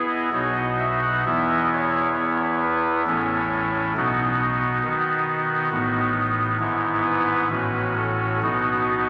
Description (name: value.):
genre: classical, chorale-style piece for pipe organ.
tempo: 62-69 BPM.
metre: 3/4.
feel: rubato.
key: E major.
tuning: A4 = 441 Hz.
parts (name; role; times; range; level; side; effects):
pipe organ, soft reed; solo; 0.0-9.1 s; G#1 to F#5; -22 LUFS; equal; none.
room: wet church reverb, RT60 2.9 s.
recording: vinyl crackle.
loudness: -22 LUFS.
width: mono.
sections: 0.0-9.1 A section.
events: none.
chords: 0.3 B; 1.3 E5; 3.1 A; 4.0 B; 5.7 B7/A; 6.6 E/G#; 7.5 F#m/A; 8.4 B.